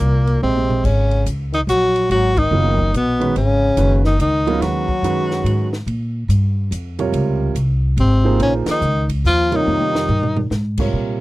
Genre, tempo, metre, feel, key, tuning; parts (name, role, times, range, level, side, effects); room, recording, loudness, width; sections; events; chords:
modal jazz; 143 BPM; 3/4; swing 64% on 8ths; A4 = 440 Hz
warm tenor saxophone; melody; 0.0-5.7, 8.0-10.5 s; Bb3 to F#4; -19 LUFS; equal
breathy trombone; second line; 0.0-5.7, 8.0-10.5 s; Bb2 to F#3; -25 LUFS; left 5 dB
upright bass; bass; 0.0-11.2 s; F#1 to A#2; -18 LUFS; equal
compact cocktail drum kit; drums; 0.0-10.8 s; crash cymbal, hi-hat, kick drum, ride cymbal, snare drum, toms; -27 LUFS; equal
warm grand piano; accompaniment; 0.4-11.2 s; B#2 to Eb5; -22 LUFS; right 5 dB
little or no reverb; dry, close 1970s-style studio recording; -15 LUFS; side -18 dB against mid
0.8-10.9 A section
drum fill 0.4-0.8, 9.7-10.5; band accent 2.3, 8.6
0.0 Bb9sus4; 0.8 G#m11; 5.9 A#m11